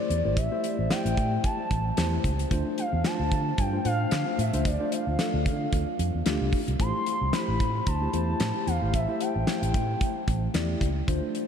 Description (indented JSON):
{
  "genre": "early-eighties boogie funk",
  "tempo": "112 BPM",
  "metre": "4/4",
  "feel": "swing 56% on 16ths",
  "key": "A minor",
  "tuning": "A4 = 440 Hz",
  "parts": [
    { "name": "gliding portamento lead", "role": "melody", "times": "0.0-10.8 s", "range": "D5 to C6", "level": "-31 LUFS", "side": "equal", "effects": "chorus, ping-pong delay" },
    { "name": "mellow tine electric piano", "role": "accompaniment", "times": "0.0-11.4 s", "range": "A3 to D5", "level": "-31 LUFS", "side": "left 2 dB", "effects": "medium stereo tremolo" },
    { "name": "fingered electric bass with an envelope filter", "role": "bass", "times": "0.1-11.2 s", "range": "G#1 to D3", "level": "-28 LUFS", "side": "right 1 dB", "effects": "none" },
    { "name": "damped 70s drum kit", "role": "drums", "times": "0.1-11.5 s", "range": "handclaps, hi-hat, kick drum, snare drum", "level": "-30 LUFS", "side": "equal", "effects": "none" }
  ],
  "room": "wet cathedral reverb, RT60 5.5 s",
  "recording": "dreamy mix soaked in reverb",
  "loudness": "-24 LUFS",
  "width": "side -8 dB against mid",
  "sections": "0.0-11.5 A section",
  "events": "none",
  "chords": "0.0 Am7; 2.5 Dm7; 6.8 Am7",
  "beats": "| 0.37 0.90 1.44 1.97 | 2.51 3.04 3.58 4.12 | 4.65 5.19 5.72 6.26 | 6.79 7.33 7.87 8.40 | 8.94 9.47 10.01 10.54 | 11.08"
}